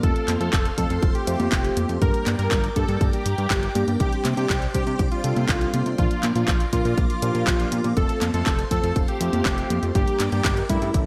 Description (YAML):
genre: italo disco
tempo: 121 BPM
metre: 4/4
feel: straight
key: unclear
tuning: A4 = 440 Hz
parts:
  - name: unison lead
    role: melody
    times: 0.0-10.9 s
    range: E4 to Bb4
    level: -30 LUFS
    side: equal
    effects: cassette tape, digital delay
  - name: phased string machine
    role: sustained chords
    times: 0.0-11.1 s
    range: A4 to D6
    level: -38 LUFS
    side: equal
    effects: ensemble chorus, phaser
  - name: tine electric piano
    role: stabs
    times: 0.0-11.1 s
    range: F3 to C5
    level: -32 LUFS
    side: equal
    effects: none
  - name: fat analog bass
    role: bass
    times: 0.0-11.1 s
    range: F1 to C3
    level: -28 LUFS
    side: equal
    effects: none
  - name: electronic kick drum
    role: drums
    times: 0.0-11.0 s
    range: none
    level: -26 LUFS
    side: equal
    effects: none
  - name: house drum kit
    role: drums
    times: 0.0-11.0 s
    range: congas, handclaps, hi-hat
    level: -29 LUFS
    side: equal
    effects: gated reverb
room: digital ambience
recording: none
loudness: -22 LUFS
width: mono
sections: 0.0-11.1 A section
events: none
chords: 0.0 F; 2.0 Gm; 4.0 Csus2; 6.0 Bb; 8.0 F; 10.0 Gm